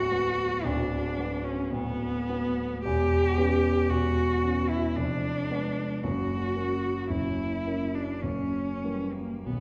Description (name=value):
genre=classical, romantic duo for cello and grand piano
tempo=45-58 BPM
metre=3/4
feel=rubato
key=B minor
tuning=A4 = 440 Hz
part: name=warm cello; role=melody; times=0.0-9.6 s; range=A#3 to G4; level=-31 LUFS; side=equal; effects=none
part: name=warm grand piano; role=accompaniment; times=0.0-9.6 s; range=B0 to C#4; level=-31 LUFS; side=equal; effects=none
room=wet recital hall reverb, RT60 1.6 s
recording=heard from further back in the room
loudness=-28 LUFS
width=mono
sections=0.0-9.6 A section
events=none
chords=0.0 Bm/D; 2.8 C#m7b5/E; 5.0 Fdim7; 6.0 F#; 8.2 F#7b9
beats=0.64 1.71 | 2.83 3.88 4.96 | 6.03 7.09 8.22 | 9.46